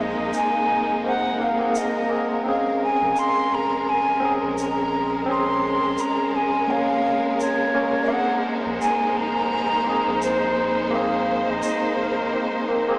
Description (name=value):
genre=trip hop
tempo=85 BPM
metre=4/4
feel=swing 57% on 16ths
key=unclear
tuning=A4 = 441 Hz
part: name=breathy mellow jazz flute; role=melody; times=0.0-13.0 s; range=Bb4 to C6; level=-22 LUFS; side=equal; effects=tape echo
part: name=barky tine electric piano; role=accompaniment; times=0.0-13.0 s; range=Bb3 to Db5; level=-24 LUFS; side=equal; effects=fast stereo tremolo, tape echo
part: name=dark symphonic violin section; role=sustained chords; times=0.0-13.0 s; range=Ab3 to C5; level=-26 LUFS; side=equal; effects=vintage 12-bit sampler grit
part: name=warm sub bass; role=bass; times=0.0-12.3 s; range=F1 to Bb1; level=-40 LUFS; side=equal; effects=tube saturation
part: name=egg shaker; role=percussion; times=0.3-11.8 s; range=none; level=-40 LUFS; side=right 1 dB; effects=none
room=wet cathedral reverb, RT60 5.1 s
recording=dreamy mix soaked in reverb, small speaker sound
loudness=-19 LUFS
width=side -29 dB against mid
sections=0.0-13.0 A section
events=none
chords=0.0 Abadd9; 2.5 Bbm9; 8.1 Abadd9